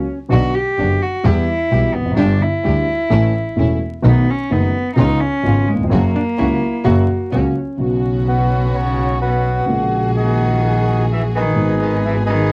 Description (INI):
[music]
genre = tango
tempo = 128 BPM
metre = 4/4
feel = rubato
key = B major from 7.8 s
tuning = A4 = 442 Hz
[part]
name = hollow-body jazz guitar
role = second line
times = 0.0-0.2, 6.2-7.8 s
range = C#4 to F#4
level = -25 LUFS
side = equal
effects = none
[part]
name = rich cello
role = second line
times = 0.0-12.5 s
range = B2 to G4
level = -24 LUFS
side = equal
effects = none
[part]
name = dark concert grand piano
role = accompaniment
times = 0.0-12.5 s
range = E1 to A4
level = -22 LUFS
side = equal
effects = none
[part]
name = clear double bass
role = bass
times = 0.0-12.5 s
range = E1 to E2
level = -21 LUFS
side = equal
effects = tube saturation
[part]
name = clear studio string section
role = stabs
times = 0.3-12.5 s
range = A3 to G#4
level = -28 LUFS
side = equal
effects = none
[part]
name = bandoneon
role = melody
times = 8.3-12.5 s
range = F#4 to E5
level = -22 LUFS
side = equal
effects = none
[sound]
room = light reverb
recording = worn, warbling old tape, cassette tape, vinyl crackle, warbly pitch drift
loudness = -17 LUFS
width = mono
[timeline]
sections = 0.0-7.8 A section; 7.8-12.5 B section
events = cello solo 0.0-7.8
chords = 0.3 Bm; 1.2 Em; 2.2 G; 3.1 A; 4.0 B7; 5.0 C#7; 5.9 F#; 7.8 Bsus2; 9.7 F#add9/A#; 11.6 G#m